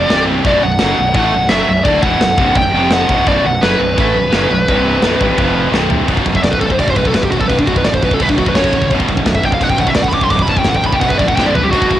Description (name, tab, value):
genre	heavy metal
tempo	170 BPM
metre	4/4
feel	straight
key	B phrygian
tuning	A4 = 440 Hz
part	high-gain lead guitar	melody	0.0-12.0 s	D4 to D6	-15 LUFS	equal	distortion, cassette tape
part	distorted electric guitar	riff	0.0-12.0 s	B1 to A3	-20 LUFS	right 1 dB	overdrive, cassette tape
part	heavy high-gain guitar	riff	0.0-12.0 s	B1 to A3	-22 LUFS	left 9 dB	distortion, cassette tape
part	scooped high-gain guitar	riff	0.0-12.0 s	B1 to A3	-20 LUFS	right 7 dB	distortion, cassette tape
part	fuzz fingered electric bass	bass	0.0-12.0 s	B0 to A#1	-21 LUFS	equal	overdrive
part	tight metal drum kit	drums	0.1-12.0 s	crash cymbal, kick drum, snare drum, toms	-17 LUFS	equal	none
room	light reverb, small room ambience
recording	home recording on cassette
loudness	-11 LUFS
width	side -12 dB against mid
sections	0.0-6.1 A section; 6.1-12.0 B section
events	drum fill 5.7-6.1, 11.4-11.7; lead electric guitar solo 6.1-12.0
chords	0.1 C5; 0.4 Bm; 2.7 F5; 3.1 B5; 4.7 C5; 5.0 B5; 5.4 F5; 5.7 C5; 6.1 B5; 8.6 F#5; 8.9 B5; 11.4 C5